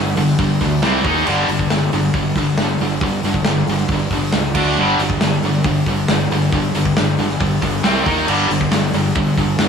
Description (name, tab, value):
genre	hard rock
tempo	137 BPM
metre	4/4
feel	straight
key	unclear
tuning	A4 = 440 Hz
part	high-gain distorted guitar	riff	0.0-9.7 s	G2 to Eb4	-17 LUFS	equal	distortion
part	fuzz fingered electric bass	bass	0.0-9.7 s	G1 to Eb2	-21 LUFS	equal	overdrive
part	big rock drum kit	drums	0.2-9.7 s	crash cymbal, hi-hat, kick drum, snare drum	-20 LUFS	equal	none
room	light reverb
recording	none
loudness	-14 LUFS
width	side -6 dB against mid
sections	0.0-9.7 A section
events	none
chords	0.0 G5; 0.8 C5; 1.1 Eb5; 1.3 G5; 4.6 D5; 4.8 G5; 7.8 C5; 8.1 Eb5; 8.3 G5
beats	0.40 0.83 | 1.27 1.71 2.15 2.59 | 3.02 3.46 3.90 4.34 | 4.78 5.21 5.65 6.09 | 6.53 6.97 7.41 7.84 | 8.28 8.72 9.16 9.60